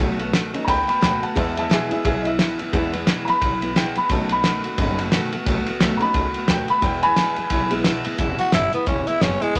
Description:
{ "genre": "rockabilly", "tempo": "176 BPM", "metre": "4/4", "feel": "swing 59% on 8ths", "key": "E major", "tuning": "A4 = 441 Hz", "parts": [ { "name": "picked steel-string acoustic guitar", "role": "accompaniment", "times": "0.0-9.6 s", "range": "E2 to F#4", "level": "-28 LUFS", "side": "equal", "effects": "none" }, { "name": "upright bass", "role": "bass", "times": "0.0-9.6 s", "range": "E1 to E2", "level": "-31 LUFS", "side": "equal", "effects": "none" }, { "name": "cloth-damped thuddy drum kit", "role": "drums", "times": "0.2-9.6 s", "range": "hi-hat, kick drum, ride cymbal, snare drum", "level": "-25 LUFS", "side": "equal", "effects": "none" }, { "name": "warm upright piano", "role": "accompaniment", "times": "0.5-7.8 s", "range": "G#3 to B5", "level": "-24 LUFS", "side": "equal", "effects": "none" }, { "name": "growling tenor saxophone", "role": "melody", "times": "8.4-9.6 s", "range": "G#3 to F#4", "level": "-23 LUFS", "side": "equal", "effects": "none" } ], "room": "moderate club reverb, RT60 0.7 s", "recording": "none", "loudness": "-21 LUFS", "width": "mono", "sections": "0.0-8.2 A section; 8.2-9.6 B section", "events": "upright piano solo 0.0-8.2", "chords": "0.0 B7; 1.4 E; 4.1 B7; 6.8 E" }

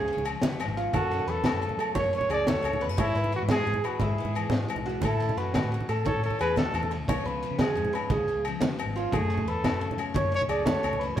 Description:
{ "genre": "highlife guitar band", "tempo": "117 BPM (dotted quarters)", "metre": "12/8", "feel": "straight", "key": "unclear", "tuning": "A4 = 441 Hz", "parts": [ { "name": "picked steel-string acoustic guitar", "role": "accompaniment", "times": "0.0-11.2 s", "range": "E2 to E#4", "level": "-36 LUFS", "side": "left 5 dB", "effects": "none" }, { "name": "electric guitar through a small old amp", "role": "arpeggios", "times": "0.0-11.2 s", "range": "A3 to C#5", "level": "-31 LUFS", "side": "right 2 dB", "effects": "none" }, { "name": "fingered electric bass", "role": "bass", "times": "0.0-11.2 s", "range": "G#1 to F#3", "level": "-33 LUFS", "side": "equal", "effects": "none" }, { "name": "crunchy breakbeat drum kit", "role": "drums", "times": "0.1-11.2 s", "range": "kick drum, ride cymbal, snare drum", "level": "-32 LUFS", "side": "left 1 dB", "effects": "none" }, { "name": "congas", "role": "percussion", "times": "0.2-11.2 s", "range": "none", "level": "-33 LUFS", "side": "right 2 dB", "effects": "none" }, { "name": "agogo bells", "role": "percussion", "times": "0.3-11.0 s", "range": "none", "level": "-36 LUFS", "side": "left 6 dB", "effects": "none" }, { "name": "mellow trumpet", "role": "melody", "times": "1.0-11.0 s", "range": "E4 to D5", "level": "-30 LUFS", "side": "equal", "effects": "none" } ], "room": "moderate stone room reverb, RT60 1.4 s", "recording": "band playing live in one room", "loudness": "-25 LUFS", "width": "side -11 dB against mid", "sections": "0.0-11.2 A section", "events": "none", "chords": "0.0 C#7; 0.9 F#m; 3.0 E/G#; 5.0 A6; 7.1 C#7; 9.1 F#m" }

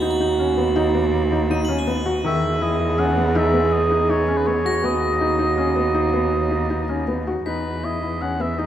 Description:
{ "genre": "contemporary instrumental, chamber music in an uneven meter", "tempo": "162 BPM", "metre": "7/4", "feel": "straight", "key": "E lydian", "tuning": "A4 = 442 Hz", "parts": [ { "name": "mellow French horn", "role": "second line", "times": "0.0-7.3 s", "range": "F#4 to G#4", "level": "-23 LUFS", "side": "right 4 dB", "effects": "none" }, { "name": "felt-muted upright piano", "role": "arpeggios", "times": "0.0-8.7 s", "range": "D#3 to F#4", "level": "-24 LUFS", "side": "left 2 dB", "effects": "none" }, { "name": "rich cello", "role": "bass", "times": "0.0-8.7 s", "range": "D#2 to E2", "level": "-24 LUFS", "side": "equal", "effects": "none" }, { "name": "crotales", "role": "texture", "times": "0.0-7.9 s", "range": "A#6 to B7", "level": "-34 LUFS", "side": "left 2 dB", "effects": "none" }, { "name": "warm oboe", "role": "melody", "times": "2.3-8.7 s", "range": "B4 to F#5", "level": "-25 LUFS", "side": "equal", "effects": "none" } ], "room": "wet cathedral reverb, RT60 5.2 s", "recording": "in a vast, echoing space", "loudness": "-18 LUFS", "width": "side -10 dB against mid", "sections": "0.0-7.5 A section; 7.5-8.7 B section", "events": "none", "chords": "0.0 Bmaj7/D#; 2.2 Emaj7; 4.8 B/D#; 7.5 E5" }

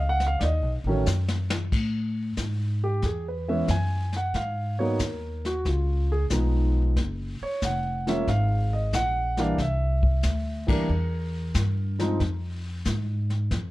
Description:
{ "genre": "jazz piano trio", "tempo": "92 BPM", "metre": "4/4", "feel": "swing 68% on 8ths", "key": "unclear", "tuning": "A4 = 442 Hz", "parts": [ { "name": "warm grand piano", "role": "melody", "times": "0.0-12.2 s", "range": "Eb3 to G#5", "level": "-28 LUFS", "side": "right 1 dB", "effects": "plate reverb" }, { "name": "upright bass", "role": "bass", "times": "0.0-13.7 s", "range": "F1 to A2", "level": "-26 LUFS", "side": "equal", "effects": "none" }, { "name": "jazz brush drum kit", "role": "drums", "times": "0.2-13.7 s", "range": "brushed snare drum, crash cymbal, hi-hat, kick drum, snare drum", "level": "-30 LUFS", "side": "left 1 dB", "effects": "none" } ], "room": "light reverb", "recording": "dark, warm production", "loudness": "-24 LUFS", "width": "side -17 dB against mid", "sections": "0.0-1.7 A section; 1.7-13.7 B section", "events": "grand piano solo 0.0-1.7; drum fill 1.1-1.7; band accent 10.6-10.9", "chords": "0.0 Cb9; 1.7 Amaj7(no3); 4.3 Ab7(no3); 5.7 Db7; 7.0 Gbmaj7; 9.6 C7; 12.2 Fm" }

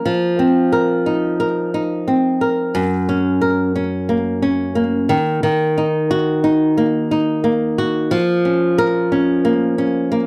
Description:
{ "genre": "pop", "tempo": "89 BPM", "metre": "4/4", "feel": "straight", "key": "unclear", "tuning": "A4 = 440 Hz", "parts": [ { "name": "flamenco guitar", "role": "solo", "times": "0.0-10.3 s", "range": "Gb2 to Bb4", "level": "-17 LUFS", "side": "equal", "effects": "slapback echo" } ], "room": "light reverb", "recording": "dry, close 1970s-style studio recording", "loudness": "-17 LUFS", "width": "mono", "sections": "0.0-2.7 A section; 2.7-10.3 B section", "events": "none", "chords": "0.1 F7sus4; 2.7 Gb; 5.1 Ebm; 8.1 Bbm/F" }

